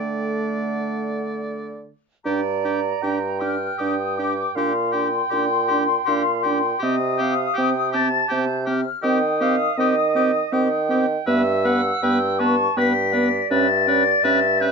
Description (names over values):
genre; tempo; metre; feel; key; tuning
classical, slow romantic movement for wind quintet; 80 BPM; 3/4; rubato; G minor; A4 = 436 Hz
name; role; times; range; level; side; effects
mellow hollow silver concert flute; melody; 0.0-14.7 s; F#5 to B6; -23 LUFS; left 8 dB; none
clear oboe; second line; 0.0-14.7 s; G4 to D5; -29 LUFS; left 1 dB; none
clear clarinet; accompaniment; 0.0-14.7 s; D4 to A5; -26 LUFS; right 12 dB; none
mellow French horn; accompaniment; 0.0-14.7 s; A3 to D4; -24 LUFS; right 1 dB; none
clear bassoon; bass; 0.0-14.7 s; G2 to Eb3; -24 LUFS; right 1 dB; none
room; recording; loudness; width
light reverb; nothing above 7.6 kHz; -18 LUFS; side -5 dB against mid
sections
0.0-2.2 A section; 2.2-14.7 B section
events
none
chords
0.0 D; 2.2 Gm; 4.6 Gm/Bb; 6.8 Cm; 9.0 Cm/Eb; 11.3 Em/G; 13.5 C#m7b5/G